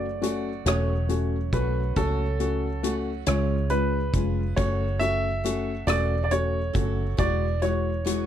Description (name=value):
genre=six-eight pop ballad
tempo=46 BPM (dotted quarters)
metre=6/8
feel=straight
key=F# minor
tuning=A4 = 440 Hz
part: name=clear baby grand piano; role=melody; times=0.0-8.3 s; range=A4 to E5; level=-29 LUFS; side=right 2 dB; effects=none
part: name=felt-muted upright piano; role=accompaniment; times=0.0-8.3 s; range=G#3 to F#4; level=-29 LUFS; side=left 6 dB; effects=none
part: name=picked steel-string acoustic guitar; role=arpeggios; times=0.0-8.3 s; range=F#2 to A4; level=-36 LUFS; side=right 19 dB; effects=none
part: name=vintage muted fingered electric bass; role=bass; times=0.0-8.3 s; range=E1 to C#2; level=-27 LUFS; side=equal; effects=none
part: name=loose indie drum kit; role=drums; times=0.2-8.3 s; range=hi-hat, kick drum, rim click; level=-30 LUFS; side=equal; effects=none
room=little or no reverb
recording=none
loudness=-23 LUFS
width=side -10 dB against mid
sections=0.0-8.3 A section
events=none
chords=0.0 F#m; 2.0 F#m/C#; 3.3 C#; 4.6 F#m; 7.2 Eadd9